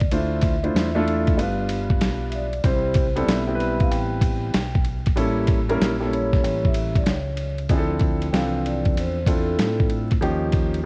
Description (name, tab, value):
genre	hip hop, jazz-hop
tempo	95 BPM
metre	4/4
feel	swing 65% on 16ths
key	D dorian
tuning	A4 = 441 Hz
part	vibraphone with soft mallets	melody	0.0-9.9 s	A4 to G5	-33 LUFS	equal	slapback echo
part	deep dub fingered electric bass	bass	0.0-10.9 s	G1 to A2	-30 LUFS	equal	none
part	dusty soul sampler-style drum kit	drums	0.0-10.8 s	hi-hat, kick drum, ride cymbal, snare drum	-25 LUFS	equal	vintage 12-bit sampler grit
part	warm upright piano	accompaniment	0.1-10.8 s	E3 to C5	-27 LUFS	equal	none
room	light reverb, digital ambience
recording	worn, warbling old tape, cassette tape, vinyl crackle, warbly pitch drift, nothing above 10.8 kHz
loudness	-22 LUFS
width	mono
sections	0.0-7.7 A section; 7.7-10.9 B section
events	none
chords	0.1 Dm9; 1.4 G7; 2.6 Cmaj7; 5.2 A7b9; 7.7 Dm9; 10.2 Eb9